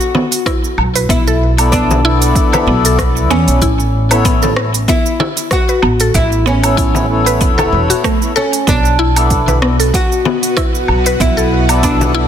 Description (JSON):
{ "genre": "organic downtempo", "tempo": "95 BPM", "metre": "4/4", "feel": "swing 56% on 16ths", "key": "B minor", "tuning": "A4 = 440 Hz", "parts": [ { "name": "oud", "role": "melody", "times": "0.0-12.3 s", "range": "C#4 to F#4", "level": "-18 LUFS", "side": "equal", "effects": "tape echo" }, { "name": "deep house drum kit", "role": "drums", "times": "0.0-12.1 s", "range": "hi-hat, rim click, shaker, woodblock", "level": "-18 LUFS", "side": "right 1 dB", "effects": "soft clipping on snare" }, { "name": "mallet-like synth pluck", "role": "arpeggios", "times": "0.1-12.3 s", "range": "A3 to B4", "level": "-18 LUFS", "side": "equal", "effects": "chorus, tape echo" }, { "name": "frame drum", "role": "percussion", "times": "0.1-12.1 s", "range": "none", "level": "-20 LUFS", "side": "left 3 dB", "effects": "none" }, { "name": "electronic kick drum", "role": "drums", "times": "0.5-12.0 s", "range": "none", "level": "-16 LUFS", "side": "equal", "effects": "none" }, { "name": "upright bass", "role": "bass", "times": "0.8-12.3 s", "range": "E1 to E2", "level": "-15 LUFS", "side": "equal", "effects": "sidechain pumping" }, { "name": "hand-pumped harmonium", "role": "accompaniment", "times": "1.6-12.3 s", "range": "B3 to D5", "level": "-18 LUFS", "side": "left 3 dB", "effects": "sidechain pumping, tape echo" }, { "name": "bowed-like drone", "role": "sustained chords", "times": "9.7-12.3 s", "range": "B2 to F#5", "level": "-20 LUFS", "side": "equal", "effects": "built-in reverb, sidechain pumping" } ], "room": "light reverb", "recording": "dense, heavily limited modern master", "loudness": "-10 LUFS", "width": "side -9 dB against mid", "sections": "0.0-12.3 A section", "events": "none", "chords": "0.0 Bm; 3.6 A; 8.7 Bm" }